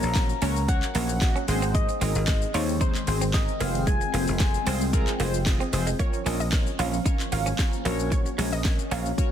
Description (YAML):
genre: dance-pop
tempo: 113 BPM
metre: 4/4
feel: straight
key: Bb minor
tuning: A4 = 440 Hz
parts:
  - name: soft struck synth lead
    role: melody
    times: 0.0-5.7 s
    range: C5 to Bb5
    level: -32 LUFS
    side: left 3 dB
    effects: chorus, phaser, tape echo
  - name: chorused polysynth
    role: accompaniment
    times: 0.0-9.3 s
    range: Ab3 to Eb5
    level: -31 LUFS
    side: equal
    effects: sidechain pumping
  - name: granular cloud pad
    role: sustained chords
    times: 0.0-9.3 s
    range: Eb3 to Db4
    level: -34 LUFS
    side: left 1 dB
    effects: built-in reverb, sidechain pumping
  - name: dry thumbed slap bass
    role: bass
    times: 0.0-9.1 s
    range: F1 to Eb2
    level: -27 LUFS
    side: equal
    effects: sidechain pumping
  - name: house drum kit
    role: drums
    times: 0.0-9.3 s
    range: handclaps, hi-hat, kick drum, shaker, snare drum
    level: -26 LUFS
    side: equal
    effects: none
  - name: tube shaker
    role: percussion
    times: 0.0-9.3 s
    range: none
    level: -46 LUFS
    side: left 18 dB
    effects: none
  - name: direct-recorded clean electric guitar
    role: riff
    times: 0.4-9.0 s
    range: Gb3 to F4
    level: -35 LUFS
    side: right 6 dB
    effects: lush chorus
  - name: analog pluck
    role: melody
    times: 6.0-9.1 s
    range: Db5 to F5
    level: -34 LUFS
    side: right 5 dB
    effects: chorus, sidechain pumping, tape echo
room: digital ambience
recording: dense, heavily limited modern master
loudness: -22 LUFS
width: side -9 dB against mid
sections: 0.0-6.0 A section; 6.0-9.3 B section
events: none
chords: 0.0 Gb/Bb; 1.5 Ab; 3.6 Fm; 6.0 Bbm; 7.9 Gb/Bb